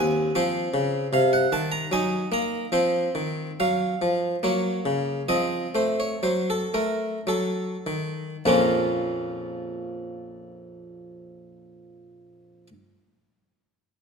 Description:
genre	classical, baroque-style suite movement for harpsichord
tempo	49-79 BPM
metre	3/4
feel	rubato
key	Bb minor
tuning	A4 = 440 Hz
part	harpsichord	solo	0.0-12.7 s	Bb1 to Bb5	-23 LUFS	equal	none
room	wet recital hall reverb, RT60 1.7 s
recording	none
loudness	-22 LUFS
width	side -5 dB against mid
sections	0.0-8.5 A section; 8.5-12.0 B section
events	slowing down 1.5-8.5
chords	0.4 F5; 1.9 Ebm/Gb; 2.7 F5; 4.4 Gb; 5.3 F7 (rootless); 8.5 Bbm

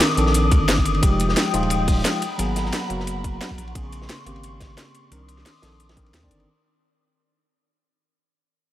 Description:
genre	liquid drum and bass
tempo	176 BPM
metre	4/4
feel	swing 54% on 16ths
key	unclear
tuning	A4 = 441 Hz
part	tine electric piano	accompaniment	0.0-6.5 s	Db3 to D5	-25 LUFS	equal	overdrive, dub echo
part	airy breathy pad	sustained chords	0.0-6.5 s	Gb5 to Eb6	-28 LUFS	left 4 dB	chorus, vintage 12-bit sampler grit
part	crunchy breakbeat drum kit	drums	0.0-6.5 s	hi-hat, ride cymbal, snare drum	-30 LUFS	equal	high-pass filter on cymbals, high-pass filter on hats, high-pass filter on snare, high-pass filter on room
part	drum and bass drum kit	drums	0.0-6.4 s	hi-hat, snare drum	-24 LUFS	equal	none
part	saturated sub bass	bass	0.2-6.5 s	Eb1 to Eb2	-24 LUFS	equal	none
part	electronic kick drum	drums	0.5-6.3 s	none	-20 LUFS	equal	none
room	light reverb, small room reverb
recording	none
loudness	-18 LUFS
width	side -13 dB against mid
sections	0.0-6.5 A section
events	fade-out 0.0-6.5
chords	0.0 Cm9; 1.0 Fm9; 2.2 Abm9; 3.6 Bbm9; 5.1 Cm9

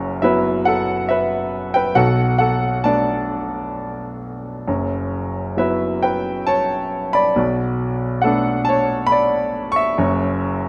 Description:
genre	classical, lyrical solo piano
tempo	67 BPM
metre	3/4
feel	uneven beats, rubato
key	B minor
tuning	A4 = 440 Hz
part	clear grand piano	solo	0.0-10.7 s	F#1 to C#6	-20 LUFS	equal	none
room	moderate recital hall reverb, RT60 1.6 s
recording	none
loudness	-19 LUFS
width	mono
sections	0.0-10.7 A section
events	none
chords	0.0 F#7sus4; 2.0 Bm7; 4.7 F#7sus4; 7.4 Bm7; 10.0 F#7(no3)

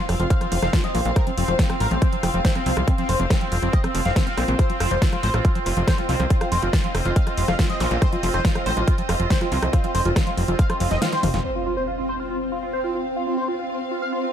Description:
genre	psychedelic trance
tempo	140 BPM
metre	4/4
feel	straight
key	unclear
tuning	A4 = 440 Hz
part	wide unison lead	melody	0.0-14.3 s	C4 to F5	-27 LUFS	equal	phaser, sidechain pumping, tape echo
part	bubbling stepped-filter texture	sustained chords	0.0-14.3 s	C4	-29 LUFS	right 1 dB	chorus, built-in reverb, sidechain pumping
part	overdriven acid bass	riff	0.0-11.4 s	Eb3 to F4	-30 LUFS	moving between left 6 dB and right 5 dB	auto-pan, cassette tape, sidechain pumping, tape echo
part	downlifter, zap and impact	sound effects	0.1-1.2, 7.8-7.9, 11.4-13.2 s	none	-36 LUFS	equal	none
part	dark studio string section	texture	0.0-14.3 s	F4 to F5	-31 LUFS	equal	sidechain pumping
part	plucky analog bass	bass	0.1-11.4 s	F1 to C2	-23 LUFS	equal	tube saturation
part	big-room dance drum kit	drums	0.1-11.4 s	hi-hat, rim click, snare drum, toms	-28 LUFS	equal	low-pass filter on hats, low-pass filter on snare, low-pass filter on cymbals, low-pass filter on toms
part	electronic kick drum	drums	0.3-10.7 s	none	-20 LUFS	equal	none
room	light reverb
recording	dark, warm production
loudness	-19 LUFS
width	side -9 dB against mid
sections	0.0-11.4 A section; 11.4-14.3 B section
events	drop 0.0-11.4; kick drops out 11.0-11.4; drum fill 11.1-11.4; impact 11.4-13.2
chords	0.0 F5

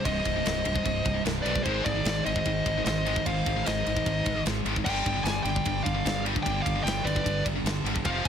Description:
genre	heavy metal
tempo	150 BPM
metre	4/4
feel	straight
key	unclear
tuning	A4 = 443 Hz
part	high-gain lead guitar	melody	0.0-8.3 s	C5 to Ab5	-30 LUFS	left 1 dB	distortion
part	nasal lead guitar with a parked wah	second line	0.0-8.3 s	Ab4 to F5	-39 LUFS	right 2 dB	overdrive
part	distorted electric guitar	riff	0.0-8.3 s	C2 to Ab3	-34 LUFS	equal	overdrive
part	tight distorted guitar	riff	0.0-8.3 s	C2 to Ab3	-34 LUFS	left 10 dB	distortion
part	tight distorted guitar	riff	0.0-8.3 s	C2 to Ab3	-34 LUFS	right 11 dB	distortion
part	modern bright fingered electric bass	bass	0.1-8.3 s	C1 to B1	-33 LUFS	equal	none
part	tight metal drum kit	drums	0.1-8.3 s	crash cymbal, kick drum, ride cymbal, snare drum	-32 LUFS	equal	none
room	small room ambience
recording	none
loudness	-25 LUFS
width	side -8 dB against mid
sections	0.0-8.3 A section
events	none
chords	0.0 Cm; 1.6 Ab; 4.9 G5

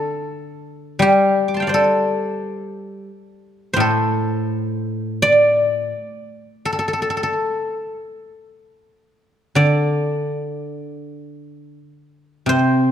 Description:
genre	chinese traditional, Chinese solo plucked strings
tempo	77-89 BPM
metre	4/4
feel	rubato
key	D yu mode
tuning	A4 = 440 Hz
part	guzheng	solo	0.0-12.9 s	A2 to D6	-17 LUFS	equal	slapback echo
room	moderate scoring stage reverb, RT60 1.9 s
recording	dark, warm production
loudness	-17 LUFS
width	side -9 dB against mid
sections	0.0-12.9 A section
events	none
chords	none

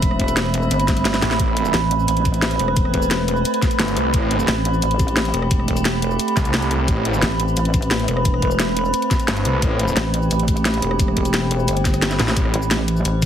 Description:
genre	dark technical drum and bass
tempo	175 BPM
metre	4/4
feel	straight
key	A minor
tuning	A4 = 442 Hz
part	metallic inharmonic drone	sustained chords	0.0-13.3 s	A3 to E5	-24 LUFS	right 1 dB	chorus, built-in reverb, sidechain pumping
part	pulsing pluck wobble bass	bass	0.0-13.3 s	E1 to A1	-21 LUFS	equal	chorus
part	drum and bass drum kit	drums	0.0-13.3 s	hi-hat, rim click, shaker, snare drum	-23 LUFS	left 1 dB	overdrive, studio ambience
part	electronic kick drum	drums	0.0-13.3 s	none	-20 LUFS	equal	studio ambience
part	warbly tape-like pad	texture	0.0-12.4 s	B5	-26 LUFS	right 4 dB	chorus, built-in reverb, tremolo, sidechain pumping
part	snarling distorted saw bass	bass	1.2-1.7, 3.8-7.2, 9.3-10.0, 12.2-12.5 s	G1 to C2	-21 LUFS	equal	distortion, overdrive
room	light reverb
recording	heavily compressed radio sound, multiband compression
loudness	-16 LUFS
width	side -9 dB against mid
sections	0.0-12.4 A section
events	drop 0.0-12.4; drum fill 0.9-1.4, 12.1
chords	0.0 Amadd9

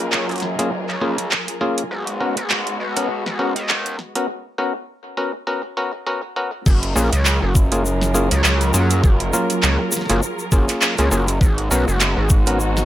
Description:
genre	glitch hop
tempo	101 BPM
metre	4/4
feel	swing 57% on 16ths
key	unclear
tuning	A4 = 439 Hz
part	muted studio string section	sustained chords	0.0-12.8 s	F#3 to A#4	-26 LUFS	right 1 dB	sidechain pumping
part	clav	stabs	0.0-12.6 s	A#3 to A#4	-23 LUFS	left 1 dB	sidechain pumping, low-pass filter, tape echo
part	gritty driven synth bass	bass	0.0-12.8 s	F#1 to F#2	-20 LUFS	equal	overdrive, high-pass filter
part	dubstep drum kit	drums	0.1-12.8 s	crash cymbal, handclaps, hi-hat, snare drum	-21 LUFS	right 1 dB	none
part	electronic kick drum	drums	6.7-12.4 s	none	-15 LUFS	equal	none
part	egg shaker	percussion	6.7-12.8 s	none	-26 LUFS	left 3 dB	none
room	little or no reverb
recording	high-pass filter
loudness	-17 LUFS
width	side -13 dB against mid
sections	0.0-6.7 A section; 6.7-12.8 B section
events	build-up 0.0-6.7; filter sweep on clav 0.0-6.7; filter sweep 0.0-6.7; break 4.3-6.7; drop 6.7-12.8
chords	0.0 F#maj9; 1.9 G#m11; 6.7 F#maj9; 11.4 G#m11

